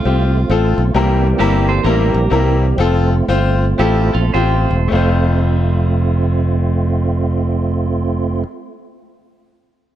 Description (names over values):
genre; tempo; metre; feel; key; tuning
gospel; 101-135 BPM; 4/4; swing 64% on 8ths; F major; A4 = 437 Hz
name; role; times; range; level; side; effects
warm horn section; melody; 0.0-0.8 s; A3 to F4; -28 LUFS; right 1 dB; tape echo
percussive tonewheel organ; sustained chords; 0.0-8.4 s; E3 to G4; -21 LUFS; right 5 dB; slow rotary speaker, overdrive, chorus vibrato
clear baby grand piano; accompaniment; 0.1-8.5 s; F2 to C5; -19 LUFS; left 5 dB; none
fingered electric bass; bass; 0.1-8.4 s; E1 to C2; -15 LUFS; equal; none
clean electric guitar; second line; 1.4-4.9 s; E4 to C5; -23 LUFS; right 7 dB; none
room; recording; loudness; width
light reverb; none; -13 LUFS; side -12 dB against mid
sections
0.9-4.9 A section; 4.9-9.7 B section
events
slowing down 0.9-4.9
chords
0.0 F; 0.9 C7; 2.8 F